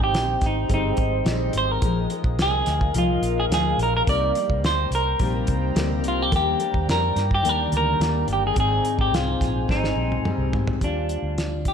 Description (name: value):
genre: indie pop, bedroom pop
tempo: 107 BPM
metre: 4/4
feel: straight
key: Eb major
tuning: A4 = 440 Hz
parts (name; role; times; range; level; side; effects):
- semi-hollow electric guitar; melody; 0.0-11.7 s; D4 to D5; -24 LUFS; right 1 dB; wide subtle chorus, analog delay
- picked steel-string acoustic guitar; accompaniment; 0.0-11.7 s; Ab2 to F4; -28 LUFS; left 5 dB; wide subtle chorus, vibrato effect
- warbly tape-like pad; sustained chords; 0.0-10.8 s; Bb4 to Bb5; -32 LUFS; right 2 dB; chorus, built-in reverb, phaser
- vintage muted fingered electric bass; bass; 0.0-11.7 s; G1 to Ab2; -26 LUFS; equal; none
- cloth-damped thuddy drum kit; drums; 0.0-11.7 s; hi-hat, kick drum, snare drum, toms; -26 LUFS; equal; none
room: moderate plate reverb, RT60 1.4 s, small room ambience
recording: dreamy mix soaked in reverb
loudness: -20 LUFS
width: side -7 dB against mid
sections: 0.0-10.8 A section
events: drum fill 9.7-10.8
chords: 0.0 Abmaj7; 1.8 Bb7sus4; 4.1 Cm7; 6.3 Ebmaj7; 8.6 Abmaj7; 10.8 Ebmaj9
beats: 0.14 0.70 1.26 | 1.82 2.39 2.95 3.51 | 4.07 4.63 5.19 5.76 | 6.32 6.88 7.44 8.00 | 8.56 9.13 9.69 10.25 | 10.81 11.38